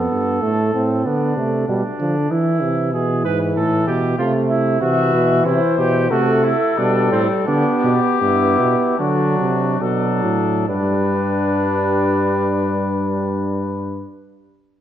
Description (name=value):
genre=classical, imitative canzona for brass ensemble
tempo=66-96 BPM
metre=4/4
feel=straight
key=A minor, G major from 4.8 s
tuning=A4 = 440 Hz
part: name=mellow trumpet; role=second line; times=0.0-14.0 s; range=C4 to B4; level=-23 LUFS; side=right 3 dB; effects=none
part: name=warm trombone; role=accompaniment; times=0.0-14.0 s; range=E3 to C4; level=-21 LUFS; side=right 2 dB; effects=none
part: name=warm bass trombone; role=bass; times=0.0-14.0 s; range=G2 to E3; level=-20 LUFS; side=right 1 dB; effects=none
part: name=mellow cornet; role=melody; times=4.8-14.0 s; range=F#4 to E5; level=-21 LUFS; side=left 7 dB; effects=none
room=wet scoring stage reverb, RT60 1.5 s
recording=worn, warbling old tape, cassette tape, warbly pitch drift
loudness=-16 LUFS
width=side -10 dB against mid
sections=0.0-10.7 A section; 10.7-14.3 B section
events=slowing down 3.6-10.7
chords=0.0 F (rootless); 1.1 Bm; 2.3 E; 3.6 Am; 4.8 C; 6.1 Am/C; 7.5 G; 9.0 D; 10.7 G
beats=0.42 1.05 1.68 | 2.31 2.94 3.56 4.19 | 4.82 5.46 6.11 6.78 | 7.48 8.21 8.99 9.81 | 10.69 11.60 12.50 13.40